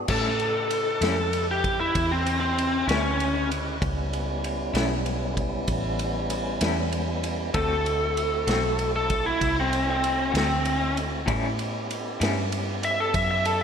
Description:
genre	slow blues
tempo	64 BPM (dotted quarters)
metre	12/8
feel	straight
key	A mixolydian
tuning	A4 = 441 Hz
part	tonewheel organ	sustained chords	0.0-13.6 s	C#3 to B4	-32 LUFS	equal	slow rotary speaker
part	vintage muted fingered electric bass	bass	0.0-13.6 s	A1 to A2	-30 LUFS	equal	none
part	biting lead guitar	melody	0.1-13.6 s	C4 to E5	-25 LUFS	equal	overdrive
part	electric guitar through a small old amp	accompaniment	0.1-12.4 s	A2 to F#4	-32 LUFS	left 2 dB	tremolo, slapback echo
part	vintage drum kit	drums	0.1-13.6 s	crash cymbal, kick drum, ride cymbal, snare drum	-30 LUFS	equal	none
room	moderate lush hall reverb, RT60 2.6 s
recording	big arena sound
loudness	-23 LUFS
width	side -7 dB against mid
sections	0.1-13.6 A section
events	lead electric guitar solo 0.1-13.6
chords	0.1 A7; 7.5 D7; 11.3 A7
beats	| 0.09 1.02 1.95 2.88 | 3.82 4.75 5.68 6.61 | 7.54 8.48 9.41 10.34 | 11.27 12.20 13.13

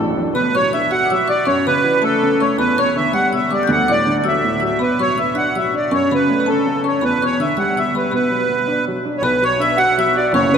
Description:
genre	celtic folk, Celtic jig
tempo	108 BPM (dotted quarters)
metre	6/8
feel	straight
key	B minor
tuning	A4 = 443 Hz
part	dark upright piano	accompaniment	0.0-10.6 s	D1 to F#4	-19 LUFS	right 1 dB	none
part	accordion	melody	0.3-10.6 s	A4 to F#5	-17 LUFS	right 1 dB	light tremolo tuning
part	marimba with hard mallets	second line	0.3-10.6 s	A5 to G6	-23 LUFS	left 5 dB	none
room	wet cathedral reverb, RT60 4.8 s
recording	recorded in a church or concert hall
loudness	-14 LUFS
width	side -7 dB against mid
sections	0.4-9.2 A section; 9.2-10.6 A section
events	none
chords	0.4 Bm; 1.5 F#m7; 2.6 Em7; 3.7 Dadd9; 4.8 Bm; 5.9 F#m; 7.0 Em7; 8.1 Bm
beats	| 0.35 0.91 | 1.47 2.02 | 2.58 3.13 | 3.69 4.25 | 4.80 5.36 | 5.91 6.46 | 7.02 7.57 | 8.12 8.68 | 9.23 9.78 | 10.33

